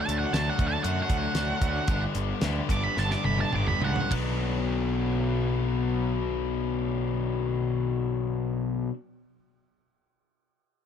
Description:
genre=classic rock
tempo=102-119 BPM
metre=4/4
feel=straight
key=B minor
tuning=A4 = 440 Hz
part: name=octave-fuzz lead guitar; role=melody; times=0.0-4.1 s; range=F#5 to D6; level=-31 LUFS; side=right 6 dB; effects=distortion, tape echo
part: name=distorted electric guitar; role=riff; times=0.0-8.9 s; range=G2 to G4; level=-29 LUFS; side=left 6 dB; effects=distortion
part: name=fuzz picked electric bass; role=bass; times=0.1-8.9 s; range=G1 to F#2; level=-30 LUFS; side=equal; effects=overdrive
part: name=damped 70s drum kit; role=drums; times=0.1-4.2 s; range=hi-hat, kick drum, ride cymbal, snare drum, toms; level=-31 LUFS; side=right 1 dB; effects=none
room=little or no reverb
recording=none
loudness=-25 LUFS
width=side -8 dB against mid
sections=0.0-4.1 A section; 4.1-8.8 B section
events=slowing down 0.0-4.1; lead electric guitar solo 0.0-4.1; drum fill 3.0-4.1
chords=0.0 D; 1.9 G; 4.1 Bm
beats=0.33 0.84 1.35 | 1.87 2.41 2.96 3.52 | 4.10 4.69 5.28 5.87 | 6.46 7.06 7.65 8.24

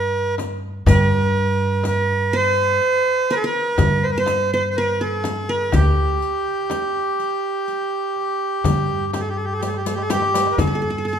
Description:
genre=Arabic maqam ensemble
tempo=124 BPM (eighths)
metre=10/8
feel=straight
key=G maqam huzam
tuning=A4 = 440 Hz
part: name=accordion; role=melody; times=0.0-11.2 s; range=G4 to C5-40c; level=-20 LUFS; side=right 1 dB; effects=none
part: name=qanun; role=second line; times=0.0-11.2 s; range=G4 to C5-40c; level=-27 LUFS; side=right 2 dB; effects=none
part: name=upright bass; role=bass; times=0.0-11.2 s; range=D2 to G2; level=-22 LUFS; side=equal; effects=none
part: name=darbuka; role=percussion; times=0.4-11.2 s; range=none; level=-26 LUFS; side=left 1 dB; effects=none
part: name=frame drum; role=percussion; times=0.4-10.8 s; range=none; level=-26 LUFS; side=left 3 dB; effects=none
part: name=riq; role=percussion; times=0.4-11.2 s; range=none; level=-31 LUFS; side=left 3 dB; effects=none
room=moderate recital hall reverb, RT60 1.3 s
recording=minimal, uncompressed stereo recording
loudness=-18 LUFS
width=side -8 dB against mid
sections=0.0-10.6 A section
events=drum fill 9.6-10.6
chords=none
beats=0.39 | 0.88 1.36 1.85 2.33 2.82 3.31 3.79 4.28 4.76 5.25 | 5.74 6.22 6.71 7.19 7.68 8.16 8.65 9.13 9.62 10.11 | 10.59 11.08

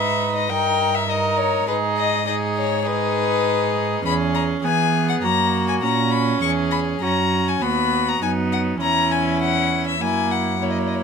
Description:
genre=quick classical-period movement for string quartet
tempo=101 BPM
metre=4/4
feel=straight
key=unclear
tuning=A4 = 442 Hz
part: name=rich violin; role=melody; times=0.0-11.0 s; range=B4 to C#6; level=-22 LUFS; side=left 8 dB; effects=none
part: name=warm violin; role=second line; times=0.0-11.0 s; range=D#4 to B4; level=-26 LUFS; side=left 3 dB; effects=none
part: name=rich viola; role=accompaniment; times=0.0-11.0 s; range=A#3 to D#4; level=-24 LUFS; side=right 4 dB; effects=none
part: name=rich cello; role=bass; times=0.0-11.0 s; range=D#2 to E3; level=-25 LUFS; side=right 6 dB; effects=none
room=light reverb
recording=minimal, uncompressed stereo recording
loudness=-18 LUFS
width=side -6 dB against mid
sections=0.0-11.0 A section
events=none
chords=0.5 D#/G; 1.7 G#m; 4.1 C#m/E; 5.2 F#; 6.4 F#5/E; 7.6 B/D#; 8.8 C#m/E; 10.0 F#7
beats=0.49 1.09 | 1.68 2.27 2.86 3.46 | 4.05 4.64 5.24 5.83 | 6.42 7.02 7.62 8.22 | 8.81 9.41 10.01 10.62

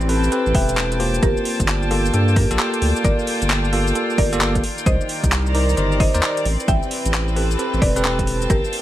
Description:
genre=UK garage, two-step garage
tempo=132 BPM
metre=4/4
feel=swing 64% on 16ths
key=unclear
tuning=A4 = 441 Hz
part: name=warm analog pad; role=sustained chords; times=0.0-8.8 s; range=Bb3 to D5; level=-31 LUFS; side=equal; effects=chorus, sidechain pumping
part: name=saturated sub bass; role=bass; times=0.0-8.6 s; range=E1 to G2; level=-20 LUFS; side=equal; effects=none
part: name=garage drum kit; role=drums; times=0.0-8.8 s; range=cabasa, handclaps, hi-hat, snare drum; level=-25 LUFS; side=equal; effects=none
part: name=rich chamber string section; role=texture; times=0.0-8.8 s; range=Eb3 to Bb5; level=-26 LUFS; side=left 1 dB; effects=sidechain pumping
part: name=bell-like tine electric piano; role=stabs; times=0.1-8.5 s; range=Bb3 to D5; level=-23 LUFS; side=equal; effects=fast stereo tremolo, ping-pong delay
part: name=mallet-like synth pluck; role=melody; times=0.5-8.6 s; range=G4 to G5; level=-26 LUFS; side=right 1 dB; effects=chorus, ping-pong delay
part: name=electronic kick drum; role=drums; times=0.5-8.6 s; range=none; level=-20 LUFS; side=equal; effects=overdrive
room=light reverb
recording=vinyl crackle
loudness=-16 LUFS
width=side -13 dB against mid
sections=0.0-8.8 A section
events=kick drops out 0.8-1.2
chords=0.0 Am9; 1.2 Gm9; 4.6 Cm9; 6.5 Am9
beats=0.32 0.77 | 1.23 1.68 2.14 2.59 | 3.04 3.50 3.95 4.41 | 4.86 5.32 5.77 6.23 | 6.68 7.14 7.59 8.04 | 8.50

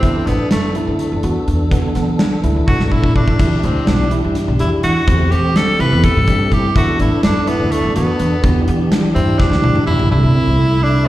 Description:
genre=progressive instrumental, band music in an uneven meter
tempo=250 BPM (eighths)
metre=7/8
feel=straight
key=E minor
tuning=A4 = 440 Hz
part: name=edgy tenor saxophone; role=melody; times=0.0-11.1 s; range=A3 to B4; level=-20 LUFS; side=equal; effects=slapback echo, ping-pong delay
part: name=mellow tonewheel organ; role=accompaniment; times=0.0-11.1 s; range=C3 to A4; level=-22 LUFS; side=left 1 dB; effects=chorus vibrato, fast rotary speaker, slapback echo
part: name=tine electric piano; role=arpeggios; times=0.0-11.1 s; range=B3 to G4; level=-23 LUFS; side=right 2 dB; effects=slapback echo
part: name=upright bass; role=bass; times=0.0-11.1 s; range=A1 to E3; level=-17 LUFS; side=equal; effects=none
part: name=huge arena drum kit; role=drums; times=0.0-10.1 s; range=crash cymbal, hi-hat, kick drum, snare drum, toms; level=-18 LUFS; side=equal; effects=none
room=light reverb, small room ambience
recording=live gig heard through the venue's PA, recital hall reverb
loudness=-13 LUFS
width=side -15 dB against mid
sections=0.0-10.1 A section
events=tenor saxophone solo 0.0-10.1; drum fill 2.7-3.4, 9.4-10.1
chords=0.0 Bm7; 3.4 Em7; 5.1 Am7/E; 6.8 Bm7; 8.4 Em7; 10.1 C6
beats=| 0.03 0.27 0.51 0.75 0.99 1.24 1.48 | 1.72 1.96 2.20 2.44 2.68 2.92 3.16 | 3.40 3.64 3.88 4.12 4.36 4.60 4.84 | 5.08 5.32 5.56 5.80 6.04 6.28 6.52 | 6.76 7.00 7.24 7.48 7.72 7.96 8.20 | 8.44 8.68 8.92 9.16 9.40 9.64 9.88 | 10.12 10.36 10.60 10.84 11.07

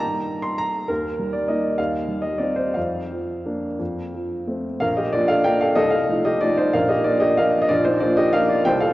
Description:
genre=classical, piano waltz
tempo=161-216 BPM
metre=3/4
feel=rubato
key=Bb major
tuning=A4 = 438 Hz
part: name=warm baby grand piano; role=solo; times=0.0-8.9 s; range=Bb1 to C6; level=-19 LUFS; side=equal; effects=none
room=wet concert hall reverb, RT60 2.4 s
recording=worn, warbling old tape, cassette tape, warbly pitch drift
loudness=-19 LUFS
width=side -16 dB against mid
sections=0.0-4.8 A section; 4.8-8.9 B section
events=none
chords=0.0 Eb/G; 0.9 Eb; 1.8 Cm/Eb; 2.8 Bb/F; 3.8 F; 4.8 Bb; 5.8 F7/C; 6.8 Bb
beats=| 0.03 0.31 0.60 | 0.90 1.19 1.49 | 1.79 2.08 2.40 | 2.76 3.10 3.45 | 3.80 4.14 4.49 | 4.83 5.15 5.46 | 5.78 6.10 6.43 | 6.75 7.06 7.38 | 7.71 8.02 8.34 | 8.65

